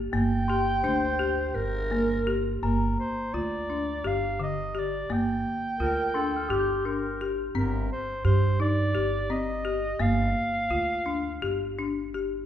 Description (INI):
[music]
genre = contemporary instrumental, chamber music in an uneven meter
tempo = 170 BPM (eighths)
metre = 7/8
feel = straight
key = G minor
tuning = A4 = 439 Hz
[part]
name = upright bass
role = bass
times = 0.0-12.5 s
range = G1 to G2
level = -30 LUFS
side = right 2 dB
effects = none
[part]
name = dark soprano saxophone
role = melody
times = 0.1-11.8 s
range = Bb4 to G5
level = -31 LUFS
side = right 1 dB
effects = none
[part]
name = folk marimba with hard mallets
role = arpeggios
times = 0.1-12.4 s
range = D3 to G4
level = -29 LUFS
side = left 2 dB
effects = none
[part]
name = glockenspiel with rubber mallets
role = texture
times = 0.5-7.6 s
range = Bb5 to G6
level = -38 LUFS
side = left 2 dB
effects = none
[part]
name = growling clarinet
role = second line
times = 0.8-7.4 s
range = G4 to C5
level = -30 LUFS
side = right 1 dB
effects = none
[sound]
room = wet recital hall reverb, RT60 1.5 s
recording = recorded in a church or concert hall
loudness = -25 LUFS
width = side -10 dB against mid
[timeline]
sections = 0.0-2.6 A section; 2.6-12.5 B section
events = none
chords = 0.0 Gm; 2.6 Gm7; 7.6 Cm/G; 10.0 Gm7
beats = | 0.13 0.48 0.84 1.19 1.55 1.91 2.27 | 2.62 2.98 3.33 3.69 4.04 4.40 4.75 | 5.10 5.46 5.81 6.16 6.51 6.86 7.21 | 7.56 7.91 8.26 8.60 8.95 9.30 9.65 | 10.00 10.35 10.71 11.06 11.42 11.78 12.14